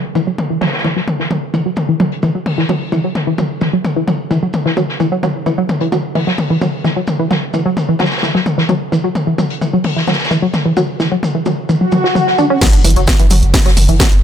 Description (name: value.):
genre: driving peak-time techno.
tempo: 130 BPM.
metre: 4/4.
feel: straight.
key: unclear.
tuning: A4 = 441 Hz.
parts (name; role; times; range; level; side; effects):
tight sequenced synth; riff; 0.2-14.0 s; E3 to F#4; -16 LUFS; equal; chorus, sidechain pumping, digital delay.
techno drum kit; drums; 0.2-14.2 s; crash cymbal, hi-hat, snare drum, toms; -18 LUFS; left 1 dB; none.
unplugged drum kit; drums; 0.2-14.1 s; hi-hat, shaker, snare drum; -24 LUFS; left 1 dB; sidechain pumping on hats, high-pass filter on hats, low-pass filter on hats, high-pass filter on snare, low-pass filter on snare, sidechain pumping on perc, high-pass filter on perc, low-pass filter on perc, high-pass filter on room, low-pass filter on room.
swell and impact; sound effects; 11.8-14.2 s; none; -18 LUFS; equal; none.
electronic kick drum; drums; 12.6-14.1 s; none; -13 LUFS; equal; none.
warm sub bass; bass; 12.7-14.2 s; F#1; -13 LUFS; equal; sidechain pumping, low-pass filter.
room: light reverb.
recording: none.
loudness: -12 LUFS.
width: side -9 dB against mid.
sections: 0.0-12.6 A section; 12.6-14.2 B section.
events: filter sweep on synth arpeggio sound 0.0-12.6; swell 11.8-12.6; drop 12.6-14.2; impact 12.6-14.2.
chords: 0.0 F#5.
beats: 0.15 0.61 1.08 | 1.54 2.00 2.46 2.92 | 3.38 3.85 4.31 4.77 | 5.23 5.69 6.15 6.62 | 7.08 7.54 8.00 8.46 | 8.92 9.38 9.85 10.31 | 10.77 11.23 11.69 12.15 | 12.62 13.08 13.54 14.00.